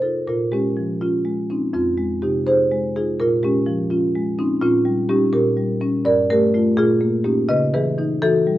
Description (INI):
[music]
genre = classical, contemporary piece for solo marimba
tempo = 83 BPM (dotted quarters)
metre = 6/8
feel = rubato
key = Bb dorian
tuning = A4 = 440 Hz
[part]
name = marimba with medium mallets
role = solo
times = 0.0-8.6 s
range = F2 to Eb5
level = -17 LUFS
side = equal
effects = none
[sound]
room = light reverb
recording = dark, warm production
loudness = -17 LUFS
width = side -14 dB against mid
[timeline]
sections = 0.3-8.6 A section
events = none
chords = 0.3 Bbm7; 1.7 Fm7; 3.2 Bbm7; 4.6 Eb9/Bb; 5.3 Bbm6; 6.1 Gm9; 6.8 Bbm7; 7.5 Dbm9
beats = | 0.28 1.01 | 1.74 2.46 | 3.20 3.91 | 4.62 5.33 | 6.06 6.78 | 7.49 8.22